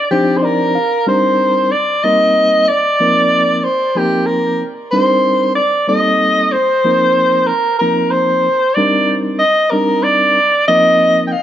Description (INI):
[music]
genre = jazz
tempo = 62 BPM (dotted quarters)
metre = 6/8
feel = straight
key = C minor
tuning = A4 = 442 Hz
[part]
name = warm soprano saxophone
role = melody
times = 0.0-11.4 s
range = G4 to G5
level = -12 LUFS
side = equal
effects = none
[part]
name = barky reed electric piano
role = accompaniment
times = 0.1-11.3 s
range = F3 to F5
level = -17 LUFS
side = equal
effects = overdrive, fast tremolo
[sound]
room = wet club reverb, RT60 0.8 s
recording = nothing above 7.9 kHz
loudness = -11 LUFS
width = side -11 dB against mid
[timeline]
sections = 0.0-1.1 A section; 1.1-11.4 B section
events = reed electric piano fill 0.1-1.1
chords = 0.0 Cm11; 1.1 Cm9; 3.0 F7sus4; 4.9 Cm9; 6.9 F7sus4; 8.8 Cm9; 10.7 F7sus4